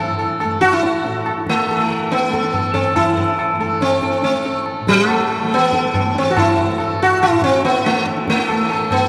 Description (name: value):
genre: indian classical, Hindustani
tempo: 141 BPM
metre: 4/4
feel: straight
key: unclear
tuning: A4 = 440 Hz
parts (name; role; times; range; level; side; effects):
- sitar; melody; 0.0-9.1 s; A3 to A4; -18 LUFS; equal; none
- tanpura; drone; 0.0-9.1 s; A2 to A3; -29 LUFS; equal; none
- tabla; percussion; 0.2-9.1 s; none; -25 LUFS; equal; none
room: wet cathedral reverb, RT60 5.1 s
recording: recorded in a church or concert hall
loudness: -17 LUFS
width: mono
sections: 0.0-3.0 A section; 3.0-9.1 B section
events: none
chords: none